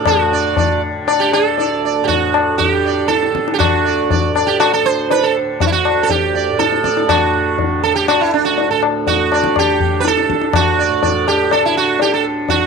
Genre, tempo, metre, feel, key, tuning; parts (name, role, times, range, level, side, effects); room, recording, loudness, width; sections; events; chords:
indian classical, Hindustani; 121 BPM; 7/4; straight; A4 = 440 Hz
sitar; melody; 0.0-12.7 s; D4 to D5; -15 LUFS; right 9 dB
tanpura; drone; 0.0-12.7 s; D2 to D3; -22 LUFS; left 1 dB
tabla; percussion; 0.1-12.7 s; -18 LUFS; left 8 dB
moderate echo chamber reverb, RT60 1.3 s, studio reverb; 1960s-style stereo with parts hard left and right; -13 LUFS; side -5 dB against mid
0.0-12.7 A section
speeding up 0.0-12.7